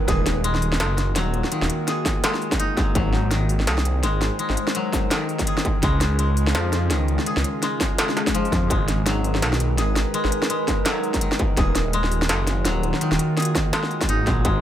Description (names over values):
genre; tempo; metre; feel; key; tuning
half-time drum and bass; 167 BPM; 4/4; swing 57% on 16ths, half-time; G# dorian; A4 = 441 Hz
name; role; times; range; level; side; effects
bowed-like drone; sustained chords; 0.0-14.6 s; C#3 to B#4; -28 LUFS; right 1 dB; built-in reverb, sidechain pumping
koto; arpeggios; 0.0-14.6 s; D#3 to G#4; -27 LUFS; left 2 dB; dub echo
phased detuned saw bass; bass; 0.1-14.6 s; D#1 to E#2; -22 LUFS; equal; phaser
electronic kick drum; drums; 0.1-14.5 s; none; -23 LUFS; equal; distortion, studio reverb
industrial drum kit; drums; 0.1-14.5 s; hi-hat, snare drum; -25 LUFS; equal; studio reverb
swell; sound effects; 8.1-8.7 s; none; -28 LUFS; left 9 dB; none
room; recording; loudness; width
light reverb; none; -19 LUFS; side -11 dB against mid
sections
0.0-14.6 A section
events
swell 8.1-8.7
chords
0.1 D#m; 3.0 G#; 5.8 C#; 8.7 G#m; 11.6 D#m